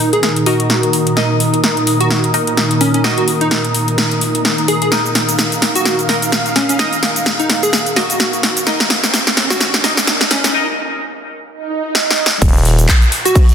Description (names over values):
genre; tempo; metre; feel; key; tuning
bass house; 128 BPM; 4/4; swing 57% on 16ths; Eb minor; A4 = 442 Hz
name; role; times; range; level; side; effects
plucky unison lead; melody; 0.0-13.5 s; Db4 to Ab4; -19 LUFS; equal; vintage 12-bit sampler grit, dub echo
sweeping resonant pad; sustained chords; 0.0-13.5 s; Bb2 to F5; -20 LUFS; right 1 dB; chorus, sidechain pumping
big-room dance drum kit; drums; 0.0-13.5 s; crash cymbal, handclaps, hi-hat, shaker, snare drum; -15 LUFS; equal; none
airy breathy pad; texture; 0.0-10.5 s; Eb4 to Eb6; -22 LUFS; equal; chorus, sidechain pumping
band-passed chord stab; stabs; 0.5-10.7 s; Eb4 to Eb5; -23 LUFS; left 1 dB; phaser, wide subtle chorus, sidechain pumping, dub echo
riser and swell; sound effects; 6.9-12.4 s; none; -25 LUFS; right 4 dB; none
growling FM bass; bass; 12.4-12.9 s; Eb1; -12 LUFS; equal; tube saturation, sidechain pumping
electronic kick drum; drums; 12.4-13.5 s; none; -10 LUFS; equal; none
raw garage drum kit; drums; 12.4-13.5 s; hi-hat, snare drum; -26 LUFS; right 2 dB; sidechain pumping on hats, high-pass filter on hats, high-pass filter on snare, high-pass filter on room
room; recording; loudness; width
moderate lush hall reverb, RT60 2.4 s; dense, heavily limited modern master, high-pass filter; -12 LUFS; side -8 dB against mid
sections
0.0-12.4 A section; 12.4-13.5 B section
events
build-up 0.0-12.4; drum fill 0.0-10.5, 11.9-12.4; filter sweep 0.0-12.4; break 10.5-12.4; swell 11.6-12.4; drop 12.4-13.5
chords
0.0 Eb5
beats
0.23 0.70 | 1.17 1.64 2.10 2.57 | 3.04 3.51 3.98 4.45 | 4.92 5.39 5.86 6.32 | 6.79 7.26 7.73 8.20 | 8.67 9.14 9.61 10.07 | 10.54 11.01 11.48 11.95 | 12.42 12.89 13.36